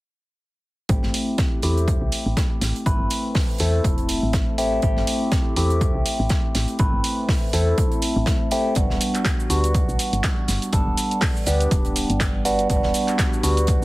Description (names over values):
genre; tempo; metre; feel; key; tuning
deep house; 122 BPM; 4/4; swing 56% on 16ths; A dorian; A4 = 440 Hz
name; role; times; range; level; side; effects
barky tine electric piano; stabs; 0.9-13.8 s; G3 to B4; -23 LUFS; equal; overdrive, phaser, sidechain pumping, dub echo
woody FM bass; bass; 0.9-13.8 s; D1 to E2; -23 LUFS; equal; sidechain pumping
electronic kick drum; drums; 0.9-13.8 s; none; -22 LUFS; equal; none
modern studio drum kit; drums; 0.9-13.8 s; hi-hat, snare drum; -32 LUFS; right 2 dB; sidechain pumping on hats, high-pass filter on hats, high-pass filter on snare, high-pass filter on room
punchy analog drum machine; drums; 1.1-13.8 s; cabasa, handclaps, hi-hat; -28 LUFS; right 1 dB; none
room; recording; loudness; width
digital ambience; heavily compressed radio sound; -19 LUFS; side -19 dB against mid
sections
0.9-13.8 A section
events
none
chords
0.9 Am7; 8.8 Gmaj7